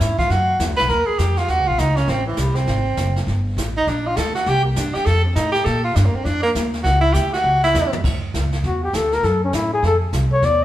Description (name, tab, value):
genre	jazz, small-group swing and bop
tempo	201 BPM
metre	4/4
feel	swing 62% on 8ths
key	unclear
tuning	A4 = 440 Hz
part	breathy tenor saxophone	second line	0.0-8.0 s	E3 to B4	-19 LUFS	right 1 dB	none
part	upright bass	bass	0.0-10.6 s	Gb1 to Bb2	-20 LUFS	equal	none
part	jazz brush drum kit	drums	0.0-10.6 s	brushed snare drum, crash cymbal, hi-hat, kick drum, snare drum, toms	-27 LUFS	equal	none
part	mellow flugelhorn	melody	8.7-10.6 s	C#4 to D5	-18 LUFS	left 2 dB	none
room	wet stone room reverb, RT60 1.3 s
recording	band playing live in one room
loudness	-16 LUFS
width	side -13 dB against mid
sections	0.0-8.0 A section; 8.0-10.6 A section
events	tenor saxophone solo 0.0-8.0; drum fill 7.4-8.0; flugelhorn solo 8.0-10.6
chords	0.0 E9; 0.9 Ebsus2; 2.1 Am; 2.7 Ab7; 3.3 Gm; 4.5 C5; 5.1 F; 5.7 Bb5; 6.9 Gb7(no3)/Db; 9.2 F#m; 9.8 F5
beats	0.00 0.29 0.59 | 0.89 1.19 1.49 1.78 | 2.08 2.38 2.68 2.98 | 3.27 3.57 3.87 4.17 | 4.47 4.77 5.06 5.36 | 5.66 5.96 6.26 6.55 | 6.85 7.15 7.45 7.74 | 8.04 8.34 8.64 8.94 | 9.23 9.53 9.83 10.13 | 10.43